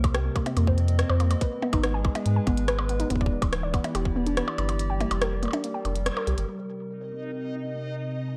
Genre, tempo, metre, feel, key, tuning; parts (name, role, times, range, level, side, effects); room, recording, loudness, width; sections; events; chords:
IDM; 142 BPM; 4/4; straight; A4 = 437 Hz
warbly tape-like pad; sustained chords; 0.0-8.4 s; C3 to Eb5; -36 LUFS; equal; chorus, built-in reverb
round analog bass; bass; 0.0-6.4 s; D1 to Ab2; -28 LUFS; equal
electronic kick drum; drums; 0.0-4.1 s; -28 LUFS; equal; studio reverb
glitchy drum kit; drums; 0.0-8.3 s; hi-hat, percussion blips, rim click; -33 LUFS; equal; low-pass filter on snare, studio reverb, low-pass filter on hats, low-pass filter on perc
warbly dusty pluck; arpeggios; 0.1-8.4 s; Bb3 to Ab5; -33 LUFS; equal; chorus, tape echo
backwards swelling texture; texture; 7.0-8.4 s; Eb4 to Eb5; -41 LUFS; equal; built-in reverb
light reverb; dark, warm production; -26 LUFS; mono
0.0-6.5 A section; 6.5-8.4 B section
kick drops out 4.8-6.5; band accent 6.1; filter sweep on ambient pad 6.5-8.4
0.0 Cm7; 1.4 Abm; 3.1 Em7; 4.8 Gm; 6.5 Cm7